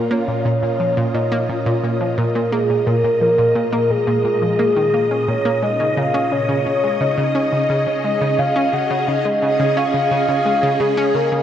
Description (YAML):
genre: ambient, sequencer-driven space music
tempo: 87 BPM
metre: 4/4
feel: straight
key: unclear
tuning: A4 = 440 Hz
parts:
  - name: soft octave-layered synth lead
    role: melody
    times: 0.0-11.4 s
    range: G#4 to F#5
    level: -18 LUFS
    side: equal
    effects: chorus, phaser, ping-pong delay
  - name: phased string machine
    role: sustained chords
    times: 0.0-11.4 s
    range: A#2 to A#5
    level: -23 LUFS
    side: equal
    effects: ensemble chorus, phaser
  - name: analog pluck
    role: riff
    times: 0.0-11.4 s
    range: A#2 to C#4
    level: -21 LUFS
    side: equal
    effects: chorus, ping-pong delay
room: wet huge ambient reverb, RT60 7.7 s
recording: worn, warbling old tape, cassette tape, warbly pitch drift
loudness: -15 LUFS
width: side -10 dB against mid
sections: 0.0-11.4 A section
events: filter sweep on synth arpeggio sound 0.0-11.4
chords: 0.0 A#m7; 5.6 C#add9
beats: | 0.11 0.80 1.49 2.18 | 2.87 3.56 4.25 4.94 | 5.63 6.32 7.00 7.70 | 8.38 9.07 9.76 10.45 | 11.14